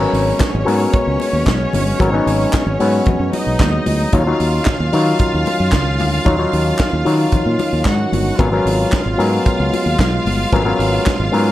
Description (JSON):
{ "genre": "disco", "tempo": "112 BPM", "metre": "4/4", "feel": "straight", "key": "G# dorian", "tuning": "A4 = 440 Hz", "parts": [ { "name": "clear studio string section", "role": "second line", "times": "0.0-11.5 s", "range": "C#4 to F#5", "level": "-22 LUFS", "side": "equal", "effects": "none" }, { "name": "overdriven clav", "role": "accompaniment", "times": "0.0-11.5 s", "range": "F#3 to C#5", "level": "-19 LUFS", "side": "left 3 dB", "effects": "auto-wah" }, { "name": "tonewheel organ", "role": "sustained chords", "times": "0.0-11.5 s", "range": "D#3 to E#4", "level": "-24 LUFS", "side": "right 2 dB", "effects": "slow rotary speaker" }, { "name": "fingered electric bass", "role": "bass", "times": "0.0-11.5 s", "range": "G1 to D#3", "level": "-18 LUFS", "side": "equal", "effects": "none" }, { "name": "tight funk drum kit", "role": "drums", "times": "0.1-11.5 s", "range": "handclaps, hi-hat, kick drum, snare drum", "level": "-20 LUFS", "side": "right 1 dB", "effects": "none" }, { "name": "congas", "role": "percussion", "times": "0.4-11.2 s", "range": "none", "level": "-26 LUFS", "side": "left 5 dB", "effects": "none" } ], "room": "light reverb, small room ambience", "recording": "dark, warm production", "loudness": "-13 LUFS", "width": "side -14 dB against mid", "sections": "0.0-11.5 A section", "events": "none", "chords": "0.0 G#m11; 4.1 D#m9; 8.4 G#m11", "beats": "0.40 0.93 1.47 | 2.00 2.53 3.06 3.60 | 4.13 4.66 5.20 5.73 | 6.26 6.80 7.33 7.86 | 8.40 8.93 9.46 10.00 | 10.53 11.06" }